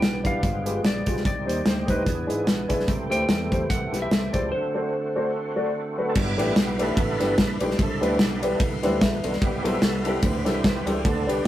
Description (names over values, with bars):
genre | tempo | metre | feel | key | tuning
uptempo gospel | 147 BPM | 4/4 | swing 56% on 8ths | G major | A4 = 441 Hz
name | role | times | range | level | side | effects
clean lap steel guitar | melody | 0.0-5.7 s | B4 to G5 | -30 LUFS | left 1 dB | none
warm upright piano | accompaniment | 0.0-11.5 s | G2 to E5 | -27 LUFS | left 1 dB | none
overdriven tonewheel organ | sustained chords | 0.0-11.5 s | C3 to B4 | -30 LUFS | right 3 dB | slow rotary speaker, chorus vibrato
fingered electric bass | bass | 0.0-11.5 s | G1 to G#2 | -30 LUFS | equal | none
modern studio drum kit | drums | 0.0-11.5 s | crash cymbal, hi-hat, kick drum, ride cymbal, snare drum | -24 LUFS | equal | none
room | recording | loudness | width
moderate studio reverb, RT60 0.5 s | rough rehearsal-room recording, warm saturation | -21 LUFS | side -13 dB against mid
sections
0.0-6.2 A section; 6.2-11.5 B section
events
break 4.5-6.2; tonewheel organ solo 6.2-11.5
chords
0.4 G7b9; 1.3 Cm; 2.1 E7; 2.9 Am7/C; 4.5 D7; 6.2 G69; 7.8 Cmaj9; 9.4 Am9; 10.2 D9sus4